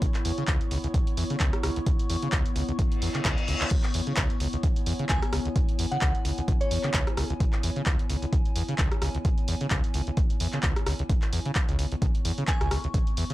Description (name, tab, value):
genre	acid house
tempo	130 BPM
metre	4/4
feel	swing 56% on 16ths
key	C# minor pentatonic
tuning	A4 = 441 Hz
part	overdriven acid bass	riff	0.0-13.3 s	C#2 to C#3	-29 LUFS	equal	distortion, tube saturation, analog chorus, vintage 12-bit sampler grit
part	electronic kick drum	drums	0.0-13.0 s	none	-26 LUFS	equal	none
part	punchy analog drum machine	drums	0.0-13.3 s	crash cymbal, handclaps, hi-hat, rim click	-32 LUFS	equal	none
part	warbly tape-like pad	texture	0.0-13.3 s	B3 to C#6	-35 LUFS	left 1 dB	chorus, built-in reverb, sidechain pumping
part	reverse cymbal	sound effects	3.0-3.7 s	none	-32 LUFS	left 3 dB	none
part	glassy synth bell	melody	5.1-7.2, 12.5-12.7 s	C#5 to G#5	-35 LUFS	equal	chorus, tape echo
room	light reverb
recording	dry, gritty hardware recording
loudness	-24 LUFS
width	side -16 dB against mid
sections	0.0-13.3 A section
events	reverse cymbal 3.0-3.7; drum fill 3.2-3.7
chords	0.0 C#m7